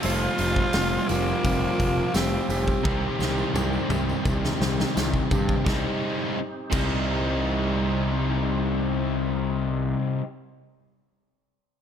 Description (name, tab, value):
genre	classic rock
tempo	85 BPM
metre	4/4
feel	straight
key	C minor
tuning	A4 = 445 Hz
part	raspy tenor saxophone	melody	0.0-3.2 s	Bb3 to F4	-29 LUFS	equal	slapback echo
part	tonewheel organ	sustained chords	0.0-9.2 s	C4 to G4	-38 LUFS	equal	none
part	cranked stack guitar	riff	0.0-10.2 s	C3 to G4	-31 LUFS	right 7 dB	overdrive
part	overdriven electric guitar	riff	0.0-10.2 s	C3 to G4	-30 LUFS	left 11 dB	none
part	overdriven electric guitar	riff	0.0-10.2 s	C3 to G4	-32 LUFS	left 1 dB	none
part	fuzz picked electric bass	bass	0.0-9.9 s	F1 to G2	-28 LUFS	equal	overdrive
part	big rock drum kit	drums	0.0-6.9 s	crash cymbal, hi-hat, kick drum, snare drum, toms	-28 LUFS	equal	none
part	tambourine	percussion	0.0-6.9 s	none	-44 LUFS	right 5 dB	none
part	lightly driven lead guitar	second line	0.1-3.2 s	F4 to C5	-33 LUFS	right 2 dB	none
room	light reverb, studio reverb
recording	none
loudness	-22 LUFS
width	side -8 dB against mid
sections	0.0-5.7 A section; 5.7-8.5 B section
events	drum fill 2.9-5.7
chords	0.0 Fsus2; 2.9 Cm